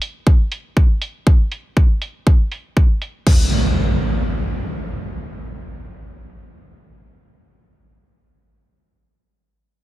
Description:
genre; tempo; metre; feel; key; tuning
melodic techno; 120 BPM; 4/4; straight; none; none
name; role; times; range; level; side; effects
techno drum kit; drums; 0.0-3.4 s; crash cymbal, hi-hat; -27 LUFS; left 1 dB; overdrive, low-pass filter on hats, low-pass filter on cymbals
electronic kick drum; drums; 0.3-3.4 s; none; -12 LUFS; equal; none
impact; sound effects; 3.3-7.4 s; none; -21 LUFS; equal; none
room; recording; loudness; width
digital ambience; none; -15 LUFS; side -15 dB against mid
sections
0.0-3.3 A section; 3.3-7.3 B section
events
none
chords
none

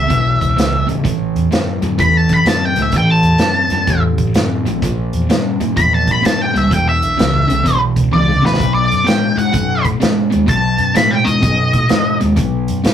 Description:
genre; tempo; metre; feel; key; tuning
blues rock power trio and southern rock; 127 BPM; 4/4; swing 65% on 8ths; unclear; A4 = 440 Hz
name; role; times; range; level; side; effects
octave-fuzz lead guitar; melody; 0.0-12.2 s; B4 to B5; -16 LUFS; equal; wah, distortion
sludgy distorted guitar; riff; 0.0-12.9 s; E2 to G#3; -16 LUFS; equal; overdrive
vintage muted fingered electric bass; bass; 0.0-12.9 s; E1 to A2; -20 LUFS; equal; none
vintage drum kit; drums; 0.1-12.9 s; hi-hat, kick drum, snare drum, toms; -19 LUFS; equal; none
room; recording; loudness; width
wet studio reverb, RT60 0.6 s; rough rehearsal-room recording; -12 LUFS; side -9 dB against mid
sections
0.0-12.9 A section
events
drum fill 8.1-8.6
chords
0.0 E; 1.1 A5; 4.8 A#dim7(no3); 6.7 E5; 8.6 B

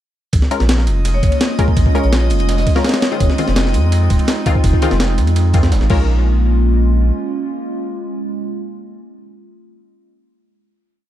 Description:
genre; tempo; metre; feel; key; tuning
drum and bass, jungle; 167 BPM; 4/4; straight; Bb minor; A4 = 441 Hz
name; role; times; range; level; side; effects
warbly tape-like pad; sustained chords; 0.8-9.7 s; Ab3 to F4; -22 LUFS; right 1 dB; chorus, built-in reverb
soft dub sub bass; bass; 0.3-7.1 s; Eb1 to F2; -14 LUFS; equal; none
breakbeat sampler-style drum kit; drums; 0.3-6.0 s; crash cymbal, kick drum, ride cymbal, snare drum; -16 LUFS; equal; small room ambience
crunchy breakbeat drum kit; drums; 0.3-5.8 s; hi-hat, snare drum; -33 LUFS; right 4 dB; none
drifting glass-harmonics texture; texture; 0.8-6.1 s; Eb5 to Eb6; -30 LUFS; left 2 dB; chorus, built-in reverb
filtered dub chord stab; stabs; 0.5-10.2 s; Eb3 to Bb4; -23 LUFS; left 4 dB; chorus, dub echo
vibraphone with medium hard mallets; melody; 1.1-3.2 s; Db5 to Eb5; -27 LUFS; left 1 dB; vintage 12-bit sampler grit, dub echo
room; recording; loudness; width
studio ambience; dark, warm production; -13 LUFS; side -12 dB against mid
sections
0.3-6.1 drop; 6.1-9.0 final hit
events
drop 0.3-6.1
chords
0.3 Bbm7; 3.2 Fm7; 5.9 Bbm7

